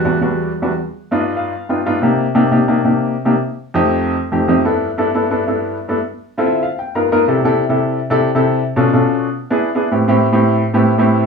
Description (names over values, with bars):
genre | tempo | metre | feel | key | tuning
jazz | 182 BPM | 4/4 | straight | C major from 7.3 s | A4 = 440 Hz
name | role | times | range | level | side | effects
warm upright piano | solo | 0.0-11.2 s | E2 to A#5 | -14 LUFS | equal | none
room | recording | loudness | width
wet club ambience, RT60 0.5 s | heard from further back in the room, studio ambience | -14 LUFS | side -5 dB against mid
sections
0.0-7.3 A section; 7.3-11.3 B section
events
upright piano fill 1.0-2.0, 6.3-7.3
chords
0.0 Em9; 0.7 G7b13; 2.0 Cm9; 3.3 F9; 4.7 G6; 6.0 Dm7; 6.6 G7alt; 7.3 C6; 8.6 Bm7b5; 9.3 E7; 9.9 Am9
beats
0.05 0.38 | 0.71 1.04 1.37 1.70 | 2.02 2.35 2.68 3.01 | 3.34 3.67 4.00 4.33 | 4.66 4.99 5.32 5.64 | 5.97 6.30 6.63 6.96 | 7.29 7.62 7.95 8.28 | 8.61 8.93 9.26 9.59 | 9.92 10.25 10.58 10.91 | 11.24